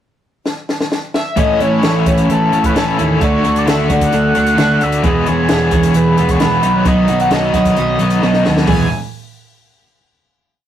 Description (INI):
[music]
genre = indie rock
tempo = 131 BPM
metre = 4/4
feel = straight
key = E major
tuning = A4 = 440 Hz
[part]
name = compact cocktail drum kit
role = drums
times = 0.5-8.8 s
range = hi-hat, kick drum, snare drum, toms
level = -19 LUFS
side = equal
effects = none
[part]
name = overdriven synth lead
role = melody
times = 1.1-8.9 s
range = A4 to G#5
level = -18 LUFS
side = equal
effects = distortion, phaser
[part]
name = crunchy overdriven guitar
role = riff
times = 1.4-8.9 s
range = A2 to F#4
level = -20 LUFS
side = left 5 dB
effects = tremolo
[part]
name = twelve-string electric guitar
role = riff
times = 1.4-8.9 s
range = E2 to G#4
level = -16 LUFS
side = right 3 dB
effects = none
[part]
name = fuzz picked electric bass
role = bass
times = 1.4-8.9 s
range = E1 to A2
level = -18 LUFS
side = left 1 dB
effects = overdrive
[sound]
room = moderate studio reverb, RT60 0.6 s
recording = rough rehearsal-room recording, warm saturation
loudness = -11 LUFS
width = side -10 dB against mid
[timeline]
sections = 0.0-1.4 pickup bar; 1.4-8.7 interlude; 8.7-10.5 final chord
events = drum fill 0.5-1.4, 8.2-8.7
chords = 0.0 N.C.; 1.4 A; 3.2 D; 5.0 E; 6.6 B; 8.7 E